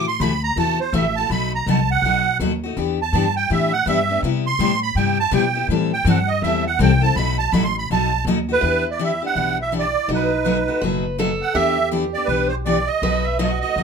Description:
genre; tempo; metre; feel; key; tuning
acoustic string swing (jazz manouche); 164 BPM; 4/4; swing 61% on 8ths; E minor; A4 = 442 Hz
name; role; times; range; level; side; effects
musette accordion; melody; 0.0-13.8 s; B4 to C6; -20 LUFS; right 5 dB; none
picked steel-string acoustic guitar; accompaniment; 0.0-13.8 s; B2 to A4; -22 LUFS; left 4 dB; none
upright bass; bass; 0.0-13.8 s; F#1 to C3; -24 LUFS; left 1 dB; none
picked old ladder-braced acoustic guitar; second line; 8.6-13.8 s; D#4 to B4; -26 LUFS; right 4 dB; none
room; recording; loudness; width
moderate studio reverb, RT60 0.6 s; minimal, uncompressed stereo recording; -17 LUFS; side -6 dB against mid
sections
0.0-8.6 A section; 8.6-13.8 B section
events
accordion solo 0.0-8.6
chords
0.0 F#m7b5; 1.3 B7; 2.8 Em7; 4.2 Cmaj7; 5.7 Am7; 7.2 B7; 8.6 Em7; 10.1 B7; 11.6 Em7; 13.0 B7

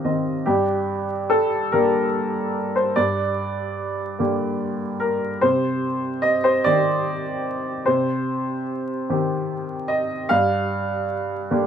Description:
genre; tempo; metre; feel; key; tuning
neoclassical minimalist piano; 49 BPM (dotted quarters); 6/8; rubato; G minor; A4 = 440 Hz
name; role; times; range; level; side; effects
clear upright piano; solo; 0.0-11.7 s; G2 to F5; -20 LUFS; equal; none
room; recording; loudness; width
moderate studio reverb, RT60 0.5 s; minimal, uncompressed stereo recording, vinyl crackle; -20 LUFS; side -8 dB against mid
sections
0.5-11.7 A section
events
none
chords
0.5 Gm; 5.4 Cm; 10.3 N.C.

